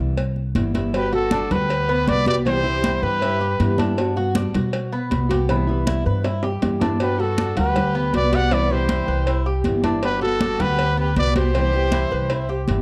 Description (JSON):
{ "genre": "latin, Cuban son and guajira", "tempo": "158 BPM", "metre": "4/4", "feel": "straight", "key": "G major", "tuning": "A4 = 440 Hz", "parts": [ { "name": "nylon-string guitar", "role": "accompaniment", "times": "0.0-12.8 s", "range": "C3 to F#4", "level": "-28 LUFS", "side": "equal", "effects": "none" }, { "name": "upright bass", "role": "bass", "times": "0.0-12.8 s", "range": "G1 to B2", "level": "-26 LUFS", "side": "equal", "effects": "none" }, { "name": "congas", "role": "percussion", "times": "0.2-12.8 s", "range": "none", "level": "-27 LUFS", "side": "equal", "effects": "none" }, { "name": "cowbell and bongos", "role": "percussion", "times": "0.2-12.8 s", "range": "none", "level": "-32 LUFS", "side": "equal", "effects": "none" }, { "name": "breathy trumpet", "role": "melody", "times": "1.0-3.8, 7.0-12.6 s", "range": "A4 to F#5", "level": "-25 LUFS", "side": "equal", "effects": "none" }, { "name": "rich studio violin section", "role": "second line", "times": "1.0-3.8, 7.0-12.6 s", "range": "F#4 to D5", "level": "-34 LUFS", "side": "equal", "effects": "none" }, { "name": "Cuban tres", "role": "arpeggios", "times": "1.1-12.8 s", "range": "B3 to F#5", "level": "-30 LUFS", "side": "equal", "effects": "none" } ], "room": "light reverb", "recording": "dark, warm production", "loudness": "-21 LUFS", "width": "mono", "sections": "0.9-12.8 A section", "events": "drum fill 6.2-7.0", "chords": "0.0 Cmaj7; 0.9 Gmaj7; 2.5 Cmaj7; 4.0 Gmaj7; 5.5 Cmaj7; 7.0 Gmaj7; 8.5 Cmaj7; 10.0 Gmaj7; 11.5 Cmaj7" }